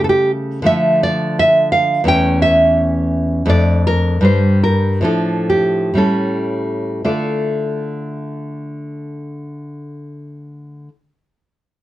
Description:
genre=romantic piece for solo classical guitar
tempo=53-88 BPM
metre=2/4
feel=rubato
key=D minor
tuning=A4 = 439 Hz
part: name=nylon-string guitar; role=solo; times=0.0-10.9 s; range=E2 to G5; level=-14 LUFS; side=equal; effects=none
room=light reverb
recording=dark, warm production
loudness=-13 LUFS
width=side -14 dB against mid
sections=0.0-7.1 A section; 7.1-11.2 B section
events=slowing down 2.8-7.1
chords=0.0 A7/C#; 0.7 Dm; 2.1 A/E; 3.5 Dm/F; 4.2 Gm; 5.0 Dm/A; 6.0 A7; 7.1 Dm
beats=| 0.67 1.38 | 2.07 2.77 | 3.51 4.25 | 5.05 5.99 | 7.06 8.11 | 9.14 10.19

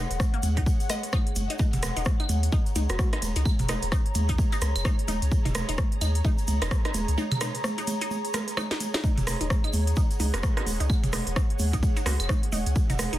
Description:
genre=minimal techno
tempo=129 BPM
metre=4/4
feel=swing 60% on 16ths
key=Eb minor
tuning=A4 = 439 Hz
part: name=resonant blip pluck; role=riff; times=0.0-13.2 s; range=Bb3 to Eb5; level=-36 LUFS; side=equal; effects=phaser, cassette tape, sidechain pumping, tape echo
part: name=punchy sub bass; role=bass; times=0.0-13.2 s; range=Eb1 to Eb2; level=-27 LUFS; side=equal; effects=sidechain pumping
part: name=ethereal airy pad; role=texture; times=0.0-13.2 s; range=Ab4 to Bb5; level=-36 LUFS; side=equal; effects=ensemble chorus, built-in reverb, sidechain pumping
part: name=techno drum kit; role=drums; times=0.1-13.2 s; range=hi-hat, rim click, snare drum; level=-33 LUFS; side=equal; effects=soft clipping on snare
part: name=egg shaker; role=percussion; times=0.1-13.2 s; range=none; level=-40 LUFS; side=right 1 dB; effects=none
part: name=electronic kick drum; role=drums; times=0.2-12.9 s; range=none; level=-25 LUFS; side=equal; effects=none
part: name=booming analog drum machine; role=percussion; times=0.2-13.1 s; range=claves, congas, rim click, toms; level=-31 LUFS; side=right 2 dB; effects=soft clipping on snare
part: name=soft struck synth lead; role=melody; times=2.9-3.1 s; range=Gb4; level=-40 LUFS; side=left 1 dB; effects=chorus, dub echo
part: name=wavetable chord stab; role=stabs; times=10.3-12.1 s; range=Bb3 to Gb4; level=-39 LUFS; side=right 2 dB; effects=dub echo
room=light reverb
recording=dense, heavily limited modern master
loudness=-23 LUFS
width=side -14 dB against mid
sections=0.0-13.2 A section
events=break 7.2-9.0; drum fill 8.7-9.0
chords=0.0 Ebm7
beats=0.20 0.66 1.13 | 1.59 2.06 2.52 2.99 | 3.46 3.92 4.38 4.85 | 5.32 5.78 6.25 6.71 | 7.18 7.64 8.11 8.57 | 9.04 9.50 9.97 10.43 | 10.90 11.36 11.83 12.29 | 12.76

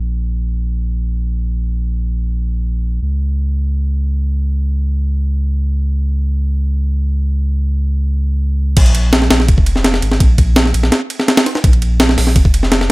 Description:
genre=drum and bass, jungle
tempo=167 BPM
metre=4/4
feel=straight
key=Bb minor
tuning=A4 = 440 Hz
part: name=saturated sub bass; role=bass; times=0.0-12.9 s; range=F1 to Db2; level=-15 LUFS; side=equal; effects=none
part: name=breakbeat sampler-style drum kit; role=drums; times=8.8-12.9 s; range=crash cymbal, hi-hat, kick drum, ride cymbal, snare drum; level=-11 LUFS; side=equal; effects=none
room=digital ambience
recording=none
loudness=-13 LUFS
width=side -22 dB against mid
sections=0.0-8.8 A section; 8.8-12.9 B section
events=drop 8.8-12.9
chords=none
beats=| 0.14 0.51 0.86 1.22 | 1.58 1.94 2.30 2.66 | 3.02 3.38 3.74 4.10 | 4.46 4.82 5.17 5.54 | 5.89 6.25 6.61 6.97 | 7.33 7.69 8.05 8.41 | 8.77 9.13 9.49 9.85 | 10.21 10.56 10.92 11.28 | 11.64 12.00 12.36 12.72

